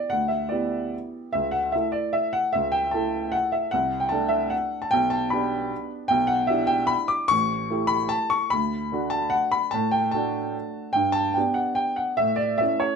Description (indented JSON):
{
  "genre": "classical, piano waltz",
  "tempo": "149 BPM",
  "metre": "3/4",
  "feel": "uneven beats, rubato",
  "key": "D major",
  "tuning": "A4 = 442 Hz",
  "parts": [
    { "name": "clear baby grand piano", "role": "solo", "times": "0.0-13.0 s", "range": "A1 to D6", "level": "-22 LUFS", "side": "equal", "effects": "none" }
  ],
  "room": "light reverb",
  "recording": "minimal, uncompressed stereo recording",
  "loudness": "-22 LUFS",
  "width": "side -6 dB against mid",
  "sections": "0.0-13.0 A section",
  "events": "none",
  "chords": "0.0 Em7/D; 1.3 A/C#; 3.7 D5/C; 4.9 G/B; 6.1 Em7/B; 7.3 A7; 8.5 D; 11.0 G; 12.2 A"
}